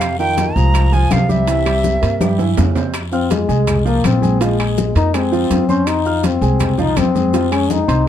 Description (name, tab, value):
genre	Afro-Cuban jazz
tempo	164 BPM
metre	4/4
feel	straight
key	unclear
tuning	A4 = 440 Hz
part	breathy bright jazz flute	melody	0.0-2.6 s	E5 to Bb5	-19 LUFS	right 2 dB	none
part	warm trombone	second line	0.0-8.1 s	C3 to Eb4	-19 LUFS	left 6 dB	none
part	warm grand piano	accompaniment	0.0-8.0 s	E3 to F6	-21 LUFS	right 6 dB	none
part	upright bass	bass	0.0-8.1 s	Bb1 to G2	-18 LUFS	equal	none
part	bongos	percussion	0.0-7.8 s	none	-27 LUFS	left 8 dB	none
part	claves	percussion	0.0-7.7 s	none	-32 LUFS	left 8 dB	none
part	congas	percussion	0.0-8.1 s	none	-21 LUFS	left 1 dB	none
part	guiro	percussion	0.0-8.1 s	none	-35 LUFS	left 9 dB	none
part	maracas	percussion	0.0-8.1 s	none	-36 LUFS	right 7 dB	none
part	timbales	percussion	0.0-8.1 s	none	-27 LUFS	right 7 dB	none
room	light reverb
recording	dark, warm production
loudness	-13 LUFS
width	side -10 dB against mid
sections	0.0-2.9 A section; 2.9-8.1 B section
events	drum fill 2.2-2.9, 7.3-8.1; trombone solo 2.9-8.1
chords	0.0 Fm7; 1.5 C7; 2.9 Bb5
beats	| 0.01 0.38 0.74 1.11 | 1.48 1.84 2.21 2.58 | 2.94 3.31 3.68 4.04 | 4.41 4.78 5.14 5.51 | 5.88 6.24 6.61 6.97 | 7.34 7.71 8.07